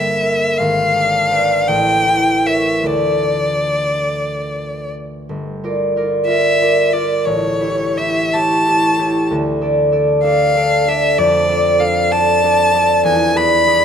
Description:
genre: classical, romantic duo for violin and harp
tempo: 48-67 BPM (dotted quarters)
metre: 6/8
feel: rubato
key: D minor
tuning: A4 = 440 Hz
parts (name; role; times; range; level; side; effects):
- clear violin; melody; 0.0-13.8 s; C#5 to B5; -16 LUFS; left 1 dB; none
- concert harp; accompaniment; 0.0-13.8 s; G1 to E5; -16 LUFS; equal; none
room: moderate recital hall reverb, RT60 1.7 s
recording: close, detailed microphones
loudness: -13 LUFS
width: side -8 dB against mid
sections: 0.0-5.3 A section; 5.3-13.8 B section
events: none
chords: 0.0 Edim/G; 0.6 G#dim7; 1.7 A7b9; 2.9 Dm; 5.3 Gm7; 7.2 A7; 9.3 Dm; 11.2 Dm/F; 13.0 E7

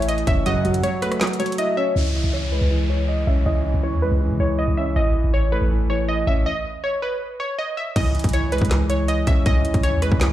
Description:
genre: hip hop, trap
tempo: 160 BPM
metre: 4/4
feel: half-time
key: C# minor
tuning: A4 = 441 Hz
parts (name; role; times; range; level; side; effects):
- glassy wavetable pluck; melody; 0.0-10.3 s; B4 to E5; -25 LUFS; equal; chorus, low-pass filter, ping-pong delay
- soft octave-layered synth lead; second line; 0.0-1.9 s; C#5 to F#5; -29 LUFS; left 4 dB; chorus, phaser, ping-pong delay
- warm concert grand piano; accompaniment; 0.0-10.3 s; E3 to C#4; -25 LUFS; right 1 dB; low-pass filter
- clean 808-style bass; bass; 0.0-10.3 s; F#1 to C#3; -20 LUFS; equal; none
- trap drum kit; drums; 0.0-1.7, 8.0-10.3 s; crash cymbal, handclaps, hi-hat, kick drum, rim click, snare drum; -22 LUFS; equal; none
- analog synth brass; stabs; 0.5-0.8 s; A1 to C#3; -23 LUFS; equal; chorus
- downlifter; sound effects; 2.0-5.0 s; none; -34 LUFS; equal; none
room: little or no reverb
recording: played on a big sound system in a bare room, large studio reverb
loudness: -18 LUFS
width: side -13 dB against mid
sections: 0.0-2.0 A section; 2.0-8.0 B section; 8.0-10.3 C section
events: kick muted 0.5-2.0; filter sweep 2.0-8.0; stop 6.5-8.0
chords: 0.5 F#m; 2.0 C#madd9; 5.0 A; 6.5 N.C.; 8.0 C#madd9

